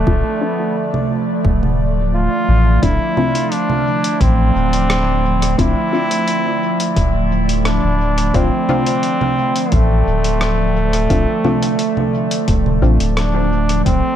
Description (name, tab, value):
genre	ambient dub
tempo	87 BPM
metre	4/4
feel	straight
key	D minor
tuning	A4 = 440 Hz
part	brilliant trombone	melody	0.0-14.2 s	A3 to F4	-19 LUFS	equal	dub echo
part	airy breathy pad	sustained chords	0.0-14.2 s	D3 to D5	-20 LUFS	right 3 dB	chorus
part	soft dub sub bass	bass	0.0-14.0 s	D1 to A1	-16 LUFS	equal	none
part	filtered dub chord stab	stabs	0.1-13.0 s	C4 to F4	-24 LUFS	left 4 dB	chorus, dub echo
part	electronic kick drum	drums	0.1-14.0 s	none	-18 LUFS	equal	overdrive, small room reverb
part	lo-fi sampler-style drum kit	drums	0.9-14.0 s	congas, hi-hat, rim click	-24 LUFS	right 2 dB	small room reverb, dub echo
room	light reverb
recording	none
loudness	-14 LUFS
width	side -10 dB against mid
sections	0.0-14.2 A section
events	none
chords	0.0 Dm7